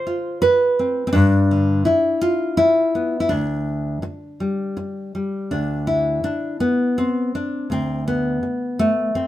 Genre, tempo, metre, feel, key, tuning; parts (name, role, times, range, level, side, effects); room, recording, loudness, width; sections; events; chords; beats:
folk, solo fingerstyle acoustic guitar; 83 BPM; 3/4; straight; D dorian; A4 = 439 Hz
nylon-string guitar; solo; 0.0-9.3 s; D2 to C5; -18 LUFS; equal
moderate studio reverb, RT60 0.7 s; band playing live in one room; -18 LUFS; side -13 dB against mid
0.0-5.5 A section; 5.5-9.3 B section
0.0 Dm7 (rootless); 1.1 G7; 3.3 D5; 5.5 Dsus2; 7.7 D5
0.42 | 1.14 1.86 2.58 | 3.30 4.03 4.77 | 5.51 6.24 6.96 | 7.69 8.42 9.14